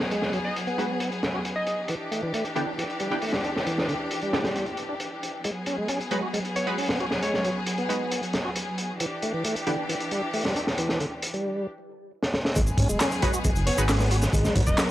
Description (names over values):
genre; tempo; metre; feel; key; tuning
breakbeat, breaks; 135 BPM; 4/4; straight; unclear; A4 = 441 Hz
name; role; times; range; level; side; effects
clear studio string section; sustained chords; 0.0-14.9 s; E3 to A#4; -31 LUFS; left 1 dB; sidechain pumping
crunchy breakbeat drum kit; drums; 0.0-14.9 s; hi-hat, kick drum, snare drum; -28 LUFS; equal; low-pass filter on kick, low-pass filter on hats, low-pass filter on snare, low-pass filter on room
tonewheel organ; riff; 0.1-14.6 s; D3 to F#4; -30 LUFS; equal; overdrive, fast rotary speaker, tube saturation, low-pass filter, tape echo
plucky unison lead; melody; 0.4-1.9, 6.6-7.6, 13.7-14.8 s; C#5 to D#5; -32 LUFS; equal; telephone sound, tape echo
orchestra-hit-like synth stab; stabs; 0.8-9.7, 13.2-13.8 s; E3 to B4; -32 LUFS; right 1 dB; built-in reverb, tape echo
dark detuned saw bass; bass; 12.6-14.7 s; D#1 to G#2; -24 LUFS; equal; none
punchy analog drum machine; drums; 12.6-14.9 s; handclaps, hi-hat, shaker; -30 LUFS; equal; none
room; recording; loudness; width
light reverb; dry, gritty hardware recording, cassette tape; -24 LUFS; side -14 dB against mid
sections
0.0-12.6 A section; 12.6-14.9 B section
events
drum fill 12.2-12.6; drop 12.6-14.9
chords
0.0 G#m7; 1.9 Em7; 5.4 G#m7; 9.0 Em7; 12.6 G#m7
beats
| 0.11 0.56 1.00 1.45 | 1.89 2.33 2.78 3.22 | 3.67 4.11 4.56 5.00 | 5.45 5.89 6.33 6.78 | 7.22 7.67 8.11 8.56 | 9.00 9.45 9.89 10.34 | 10.78 11.22 11.67 12.11 | 12.56 13.00 13.45 13.89 | 14.34 14.78